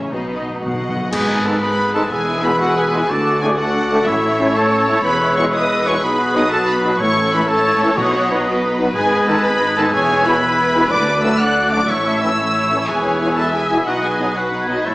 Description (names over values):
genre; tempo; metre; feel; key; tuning
cinematic, heroic adventure film score; 122 BPM (dotted quarters); 12/8; straight; B mixolydian; A4 = 439 Hz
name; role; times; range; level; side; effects
rich symphonic violin section; melody; 0.0-14.9 s; D#5 to F#6; -23 LUFS; left 1 dB; none
warm symphonic violin section; second line; 0.0-14.9 s; G#3 to A4; -27 LUFS; left 1 dB; none
warm symphonic viola section; accompaniment; 0.0-14.9 s; C#4 to E5; -23 LUFS; equal; none
mellow French horn section; sustained chords; 0.0-14.7 s; B2 to E4; -27 LUFS; left 1 dB; none
rich symphonic cello section; bass; 0.0-14.9 s; D2 to B2; -25 LUFS; right 1 dB; none
rich symphonic double bass section; bass; 0.0-14.9 s; E1 to D2; -26 LUFS; right 1 dB; none
timpani; percussion; 0.1-1.1, 8.0-8.4 s; B2; -30 LUFS; left 1 dB; none
mellow trumpet; stabs; 0.6-14.9 s; D#4 to F#5; -21 LUFS; equal; none
clear oboe; second line; 1.1-14.9 s; B4 to E5; -24 LUFS; equal; none
mellow hollow concert flute; second line; 1.1-14.9 s; D6 to A6; -24 LUFS; left 1 dB; none
warm clarinet; second line; 1.1-14.9 s; D#4 to B4; -27 LUFS; left 1 dB; none
clash cymbals and concert bass drum; percussion; 1.1-1.7 s; none; -28 LUFS; left 1 dB; none
brilliant trombone section; sustained chords; 1.4-14.8 s; G#2 to B3; -26 LUFS; equal; none
room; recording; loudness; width
wet scoring stage reverb, RT60 1.5 s; small speaker sound; -14 LUFS; side -19 dB against mid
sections
0.0-1.1 A section; 1.1-14.9 A section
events
timpani fill 0.1-1.1; band accent 1.1-1.5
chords
0.1 B; 1.1 G#m; 2.1 E; 3.1 D; 4.1 A; 5.0 E; 6.0 B; 7.0 A; 8.0 B; 9.0 G#m; 9.9 E; 10.9 D; 11.9 A; 12.9 E; 13.9 B